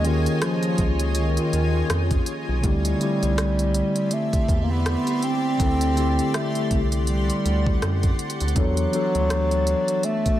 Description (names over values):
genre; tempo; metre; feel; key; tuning
contemporary R&B; 81 BPM; 4/4; swing 58% on 16ths; unclear; A4 = 440 Hz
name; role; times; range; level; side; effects
mellow bass clarinet; melody; 0.0-10.4 s; Eb3 to C4; -24 LUFS; right 1 dB; ping-pong delay
mellow tine electric piano; accompaniment; 0.0-10.4 s; D3 to A4; -27 LUFS; left 2 dB; fast stereo tremolo
granular cloud pad; sustained chords; 0.0-10.4 s; F4 to C6; -31 LUFS; equal; built-in reverb
rubbery square bass; bass; 0.0-9.7 s; Cb2 to Gb2; -24 LUFS; equal; none
smooth R&B drum kit; drums; 0.0-10.4 s; hi-hat, kick drum, rim click; -26 LUFS; equal; none
room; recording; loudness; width
light reverb; none; -20 LUFS; side -13 dB against mid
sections
0.0-10.4 A section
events
none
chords
0.0 Eb9sus4; 2.6 D9sus4; 8.6 E9sus4